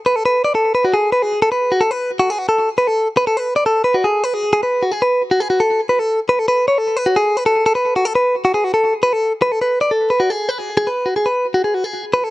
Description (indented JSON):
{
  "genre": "rock",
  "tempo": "154 BPM",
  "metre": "4/4",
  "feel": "straight",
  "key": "unclear",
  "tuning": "A4 = 443 Hz",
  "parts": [
    { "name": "direct-recorded clean electric guitar", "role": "solo", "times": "0.1-12.3 s", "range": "F#4 to D5", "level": "-14 LUFS", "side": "equal", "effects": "digital delay" }
  ],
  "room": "light reverb",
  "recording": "none",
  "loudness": "-14 LUFS",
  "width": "side -17 dB against mid",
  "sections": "0.0-1.4 A section; 1.4-12.3 B section",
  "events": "none",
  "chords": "none"
}